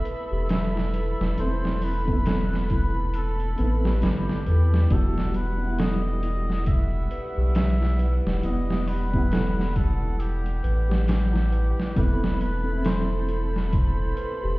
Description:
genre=trip hop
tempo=68 BPM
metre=4/4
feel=swing 59% on 16ths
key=E minor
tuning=A4 = 440 Hz
part: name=trumpet with cup mute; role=melody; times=0.0-14.6 s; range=G4 to E5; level=-35 LUFS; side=equal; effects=dub echo
part: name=felt-muted upright piano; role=accompaniment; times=0.0-14.6 s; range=G3 to F#5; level=-33 LUFS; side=equal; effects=tremolo, tape echo
part: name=dark chamber violin section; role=sustained chords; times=0.0-14.6 s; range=G3 to B5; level=-37 LUFS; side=right 3 dB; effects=none
part: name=celesta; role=arpeggios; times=0.0-14.6 s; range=E4 to B4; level=-35 LUFS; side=left 1 dB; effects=vintage 12-bit sampler grit, ping-pong delay
part: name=trip hop sampler-style drum kit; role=drums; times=0.1-14.4 s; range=hi-hat, kick drum, snare drum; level=-26 LUFS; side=equal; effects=none
part: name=soft dub sub bass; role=bass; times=0.3-14.6 s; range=E1 to E2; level=-24 LUFS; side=equal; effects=none
room=studio reverb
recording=heard muffled through a wall, stone room reverb, EQ, nothing above 10.4 kHz, faint mains hum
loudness=-22 LUFS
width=side -20 dB against mid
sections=0.0-14.6 A section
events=none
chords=0.0 Amadd9/E; 4.9 Emadd9; 12.0 Amadd9/E

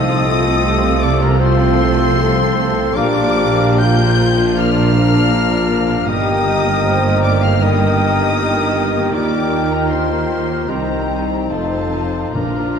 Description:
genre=classical, slow romantic movement for symphony orchestra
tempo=78 BPM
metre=4/4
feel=rubato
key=Bb major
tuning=A4 = 440 Hz
part: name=warm symphonic violin section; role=melody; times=0.0-12.8 s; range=A5 to G6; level=-23 LUFS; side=left 5 dB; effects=none
part: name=clear clarinet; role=second line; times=0.0-12.8 s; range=A4 to G5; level=-26 LUFS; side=left 2 dB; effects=none
part: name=mellow large flute ensemble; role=second line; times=0.0-12.8 s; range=F5 to G5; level=-26 LUFS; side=left 2 dB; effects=none
part: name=warm oboe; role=second line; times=0.0-12.8 s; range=A4 to C5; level=-25 LUFS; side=equal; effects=none
part: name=warm symphonic violin section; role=second line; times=0.0-12.8 s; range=G3 to G4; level=-25 LUFS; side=left 3 dB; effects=none
part: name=rich studio viola section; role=accompaniment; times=0.0-12.8 s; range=Eb3 to C4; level=-23 LUFS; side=right 2 dB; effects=none
part: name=warm bassoon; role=accompaniment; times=0.0-12.8 s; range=C4 to Eb4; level=-24 LUFS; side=right 1 dB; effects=none
part: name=mellow French horn section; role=sustained chords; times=0.0-12.8 s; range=D4 to C5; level=-21 LUFS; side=left 4 dB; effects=none
part: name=mellow tuba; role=bass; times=0.0-12.8 s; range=F1 to Eb2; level=-23 LUFS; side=right 4 dB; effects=none
part: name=rich symphonic double bass section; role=bass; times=0.0-12.8 s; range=F1 to Eb2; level=-22 LUFS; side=right 4 dB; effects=none
part: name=warm symphonic cello section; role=bass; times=0.0-12.8 s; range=C2 to C3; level=-21 LUFS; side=right 1 dB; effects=none
part: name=timpani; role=percussion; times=12.3-12.8 s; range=Bb2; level=-24 LUFS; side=equal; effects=none
room=moderate concert hall reverb, RT60 2.1 s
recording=dark, warm production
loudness=-13 LUFS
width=side -7 dB against mid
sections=0.0-12.8 A section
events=none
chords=0.0 F7/C; 3.0 Bb; 6.1 Eb/G; 9.1 Ebmaj7; 10.7 Cm; 11.5 F7

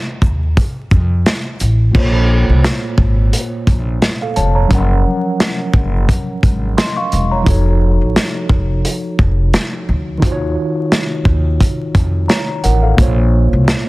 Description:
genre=hip hop, boom-bap hip-hop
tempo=87 BPM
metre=4/4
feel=swing 56% on 16ths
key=Bb harmonic minor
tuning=A4 = 440 Hz
part: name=upright bass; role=bass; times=0.2-13.7 s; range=E1 to F2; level=-14 LUFS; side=equal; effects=none
part: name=crunchy breakbeat drum kit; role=drums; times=0.2-13.9 s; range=crash cymbal, hi-hat, kick drum, shaker, snare drum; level=-15 LUFS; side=equal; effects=none
part: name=mellow tine electric piano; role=accompaniment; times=1.9-13.9 s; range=Bb2 to Db6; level=-19 LUFS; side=equal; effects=medium stereo tremolo, high-pass filter, low-pass filter
room=studio reverb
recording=dense, heavily limited modern master, vinyl crackle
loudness=-12 LUFS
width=side -20 dB against mid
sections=0.0-1.9 A section; 1.9-13.9 B section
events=break 0.0-1.9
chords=0.0 Ebsus2; 1.9 Bbmadd9; 4.7 Gbmaj7; 7.5 F7b9b13; 10.2 Ebm9; 13.0 Bbmadd9

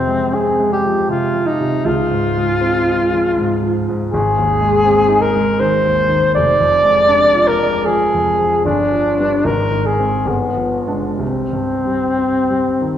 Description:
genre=classical, romantic duo for alto saxophone and grand piano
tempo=60-84 BPM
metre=3/4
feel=rubato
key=unclear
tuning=A4 = 439 Hz
part: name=warm alto saxophone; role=melody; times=0.0-13.0 s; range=B3 to D5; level=-15 LUFS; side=left 1 dB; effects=none
part: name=clear grand piano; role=accompaniment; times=0.0-13.0 s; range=F1 to F4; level=-19 LUFS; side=right 1 dB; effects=none
room=wet scoring stage reverb, RT60 2.0 s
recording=heard from further back in the room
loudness=-13 LUFS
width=side -10 dB against mid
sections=0.0-13.0 A section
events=none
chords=0.0 Fm; 1.9 Dbmaj7; 4.1 Ab; 6.3 Ddim/F; 8.6 G7; 9.4 Ab; 10.3 G7b9; 11.2 C5

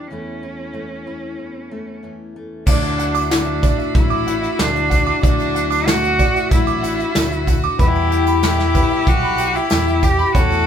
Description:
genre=indie folk with a building arrangement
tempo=94 BPM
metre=4/4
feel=straight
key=D major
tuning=A4 = 440 Hz
part: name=rich cello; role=melody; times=0.0-10.7 s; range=C#4 to G4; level=-21 LUFS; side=equal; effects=none
part: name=fingerpicked steel-string acoustic guitar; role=accompaniment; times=0.0-2.6 s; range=E2 to E4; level=-31 LUFS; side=left 2 dB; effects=none
part: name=rich fiddle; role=second line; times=2.7-10.7 s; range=F#4 to A4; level=-25 LUFS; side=left 4 dB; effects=none
part: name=picked twelve-string acoustic guitar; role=accompaniment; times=2.7-10.7 s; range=E2 to E4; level=-25 LUFS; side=left 6 dB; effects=none
part: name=bright upright piano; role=arpeggios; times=2.7-10.7 s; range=B4 to D6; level=-24 LUFS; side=right 5 dB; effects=none
part: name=picked electric bass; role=bass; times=2.7-10.7 s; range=A1 to E2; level=-23 LUFS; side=right 1 dB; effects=none
part: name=soft brush drum kit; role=drums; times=2.7-10.7 s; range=crash cymbal, hi-hat, kick drum, snare drum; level=-18 LUFS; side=equal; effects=none
part: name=tambourine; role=percussion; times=2.7-10.6 s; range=none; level=-37 LUFS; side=right 7 dB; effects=none
room=moderate studio reverb, RT60 0.7 s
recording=band playing live in one room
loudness=-14 LUFS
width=side -8 dB against mid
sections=0.0-2.7 A section; 2.7-10.7 B section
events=none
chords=0.1 A/E; 2.7 Dadd9; 7.8 Em

